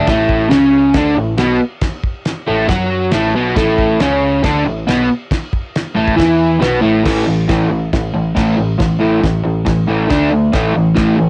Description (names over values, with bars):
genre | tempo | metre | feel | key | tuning
garage rock duo or trio | 138 BPM | 4/4 | straight | A major | A4 = 440 Hz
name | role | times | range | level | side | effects
crunchy overdriven guitar | riff | 0.0-11.3 s | A2 to F#4 | -15 LUFS | equal | cassette tape
overdriven picked electric bass | bass | 0.1-11.3 s | A1 to F#2 | -24 LUFS | equal | tube saturation
cloth-damped thuddy drum kit | drums | 0.1-11.1 s | crash cymbal, kick drum, snare drum | -23 LUFS | equal | cassette tape
room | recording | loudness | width
moderate booth ambience, RT60 0.3 s | home recording on cassette | -14 LUFS | mono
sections
0.1-7.1 A section; 7.1-11.3 B section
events
none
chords
0.1 A; 7.1 A5; 10.1 D5; 10.5 A5